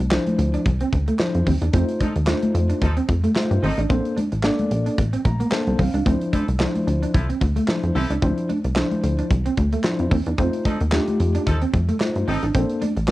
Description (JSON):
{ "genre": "early-eighties boogie funk", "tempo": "111 BPM", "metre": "4/4", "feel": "swing 56% on 16ths", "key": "D minor", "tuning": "A4 = 440 Hz", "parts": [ { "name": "electric guitar at the edge of break-up", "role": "riff", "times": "0.0-13.1 s", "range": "A3 to D4", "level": "-27 LUFS", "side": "right 4 dB", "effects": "ensemble chorus, cassette tape" }, { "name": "plucky analog bass", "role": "bass", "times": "0.0-13.1 s", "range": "G#1 to G2", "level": "-21 LUFS", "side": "equal", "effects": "none" }, { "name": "modern studio drum kit", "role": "drums", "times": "0.0-13.1 s", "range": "handclaps, hi-hat, kick drum, snare drum", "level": "-24 LUFS", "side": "equal", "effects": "cassette tape" }, { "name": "tine electric piano", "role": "accompaniment", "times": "0.1-13.1 s", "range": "F3 to Bb5", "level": "-25 LUFS", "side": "left 2 dB", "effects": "fast stereo tremolo, cassette tape" }, { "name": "congas", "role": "percussion", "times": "0.1-13.0 s", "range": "none", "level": "-28 LUFS", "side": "left 2 dB", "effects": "none" }, { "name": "warm horn section", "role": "second line", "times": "2.0-12.4 s", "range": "F3 to A4", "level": "-30 LUFS", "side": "equal", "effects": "cassette tape" } ], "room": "small room ambience", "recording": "home recording on cassette", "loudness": "-18 LUFS", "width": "side -17 dB against mid", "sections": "0.0-13.1 A section", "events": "tine electric piano fill 5.0-6.1", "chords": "0.0 Dm9; 1.7 F7; 3.9 Bbmaj9; 6.1 Dm9; 10.4 F7; 12.5 Bbmaj9" }